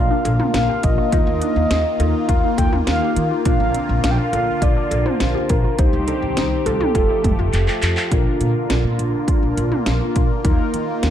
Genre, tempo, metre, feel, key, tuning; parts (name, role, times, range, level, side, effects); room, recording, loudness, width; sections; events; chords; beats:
synth-pop; 103 BPM; 4/4; straight; Bb major; A4 = 440 Hz
mellow horn-like synth lead; melody; 0.0-7.8 s; A4 to G5; -23 LUFS; equal; chorus, slapback echo
mellow synth brass; accompaniment; 0.0-11.1 s; D4 to C5; -24 LUFS; equal; chorus
phased analog pad; sustained chords; 0.0-11.1 s; D3 to G4; -26 LUFS; left 2 dB; phaser, chorus
warbly dusty pluck; arpeggios; 0.0-8.1 s; C4 to G4; -29 LUFS; right 1 dB; chorus, phaser, slapback echo
upright bass; bass; 0.0-11.1 s; F1 to Eb3; -21 LUFS; equal
house drum kit; drums; 0.2-11.1 s; cowbell, handclaps, hi-hat, kick drum, snare drum, toms; -20 LUFS; equal
light reverb, digital ambience; dark, warm production; -16 LUFS; side -10 dB against mid
0.0-8.1 A section; 8.1-11.1 B section
drum fill 7.5-8.1
0.0 Bb; 1.1 Ebsus2; 3.5 Bb; 5.8 Cm; 7.0 Fadd9; 8.1 Bb; 10.4 Ebsus2
0.54 | 1.12 1.71 2.29 2.87 | 3.46 4.04 4.62 5.20 | 5.79 6.37 6.95 7.53 | 8.12 8.70 9.28 9.86 | 10.45 11.03